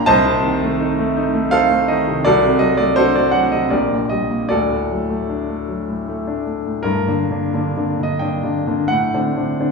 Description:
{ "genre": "classical, romantic character piece for solo piano", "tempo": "75-89 BPM", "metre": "3/4", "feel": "rubato", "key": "G minor", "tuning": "A4 = 441 Hz", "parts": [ { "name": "clear baby grand piano", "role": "solo", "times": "0.0-9.7 s", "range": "Bb1 to A5", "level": "-16 LUFS", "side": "equal", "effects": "none" } ], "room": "wet recital hall reverb, RT60 1.4 s", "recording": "heard from further back in the room", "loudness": "-16 LUFS", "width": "side -3 dB against mid", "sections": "0.0-6.8 A section; 6.8-9.7 B section", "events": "none", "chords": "0.1 Adim/C; 2.2 D7/C; 3.7 Gm/Bb; 4.5 D; 6.8 Gm; 8.9 D7/A", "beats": "| 0.07 0.79 1.52 | 2.24 2.96 3.71 | 4.50 5.29 6.08 | 6.83 7.53 8.21 | 8.90 9.58" }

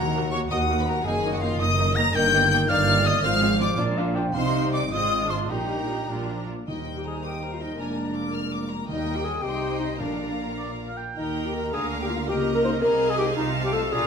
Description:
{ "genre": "quick classical-period movement for symphony orchestra", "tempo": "100-111 BPM (dotted quarters)", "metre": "6/8", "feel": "rubato", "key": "Eb major", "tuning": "A4 = 440 Hz", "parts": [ { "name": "rich chamber violin section", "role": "melody", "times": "0.0-14.1 s", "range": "Bb4 to Bb6", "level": "-32 LUFS", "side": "left 3 dB", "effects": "none" }, { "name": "bright silver concert flute", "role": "second line", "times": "0.0-14.1 s", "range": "D5 to Bb6", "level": "-29 LUFS", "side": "left 3 dB", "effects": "none" }, { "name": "clear studio violin section", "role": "second line", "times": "0.0-14.1 s", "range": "F4 to F6", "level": "-32 LUFS", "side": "left 1 dB", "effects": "none" }, { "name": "dark clarinet", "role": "second line", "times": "0.0-14.1 s", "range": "D4 to G5", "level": "-28 LUFS", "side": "left 1 dB", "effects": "none" }, { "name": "rich studio viola section", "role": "accompaniment", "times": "0.0-14.1 s", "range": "Bb3 to C5", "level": "-32 LUFS", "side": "right 2 dB", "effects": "none" }, { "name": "dark French horn section", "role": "sustained chords", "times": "0.0-13.8 s", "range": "Eb3 to Bb4", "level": "-32 LUFS", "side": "left 4 dB", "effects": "none" }, { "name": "rich studio cello section", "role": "bass", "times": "0.0-14.1 s", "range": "Eb2 to Eb3", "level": "-32 LUFS", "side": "right 2 dB", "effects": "none" }, { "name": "rich studio double bass section", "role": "bass", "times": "0.0-14.1 s", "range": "F1 to Eb2", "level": "-30 LUFS", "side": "right 4 dB", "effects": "none" }, { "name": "timpani", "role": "percussion", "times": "0.0-0.5, 6.7-10.5 s", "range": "Bb2 to Eb3", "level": "-35 LUFS", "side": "left 2 dB", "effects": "none" }, { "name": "warm oboe", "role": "second line", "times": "10.6-11.2 s", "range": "D5 to G5", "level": "-36 LUFS", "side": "right 4 dB", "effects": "none" } ], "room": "wet recital hall reverb, RT60 1.4 s", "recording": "minimal, uncompressed stereo recording", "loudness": "-22 LUFS", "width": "side -6 dB against mid", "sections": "0.0-6.7 A section; 6.7-14.1 B section", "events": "none", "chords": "0.0 Ebm; 1.1 Ebm/Gb; 2.1 Eb/G; 3.2 Fm/Ab; 3.8 Bb; 4.3 Cm; 4.9 Fm7/Ab; 5.5 Eb/Bb; 6.1 Bb; 6.7 Eb; 7.8 Bb7/F; 8.9 Eb; 9.4 Cm; 10.0 Bb; 11.2 Eb; 11.7 Bb/D; 12.3 Eb7/Db; 12.8 Ab/C; 13.4 F7/C", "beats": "0.51 | 1.05 1.60 | 2.15 2.69 | 3.24 3.79 | 4.34 4.91 | 5.49 6.08 | 6.68 7.24 | 7.80 8.34 | 8.89 9.44 | 10.00 10.59 | 11.17 11.74 | 12.29 12.83 | 13.38 13.94" }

